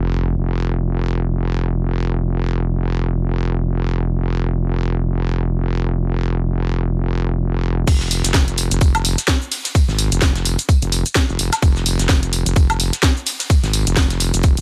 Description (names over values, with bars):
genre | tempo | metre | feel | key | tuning
bass house | 128 BPM | 4/4 | swing 58% on 16ths | F minor | A4 = 439 Hz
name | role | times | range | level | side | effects
wobble bass | bass | 0.0-14.6 s | Eb1 to Ab1 | -21 LUFS | equal | chorus, tube saturation, sidechain pumping
big rock drum kit | drums | 7.9-14.6 s | hi-hat, snare drum, tambourine | -32 LUFS | equal | sidechain pumping on hats, high-pass filter on hats, high-pass filter on snare, sidechain pumping on perc, high-pass filter on perc, high-pass filter on room
electronic kick drum | drums | 7.9-14.5 s | none | -17 LUFS | equal | overdrive
garage drum kit | drums | 7.9-14.6 s | crash cymbal, hi-hat, shaker, snare drum, woodblock | -23 LUFS | equal | overdrive
room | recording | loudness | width
small room ambience | none | -19 LUFS | mono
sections
0.0-7.9 A section; 7.9-14.6 B section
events
drop 7.9-14.6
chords
none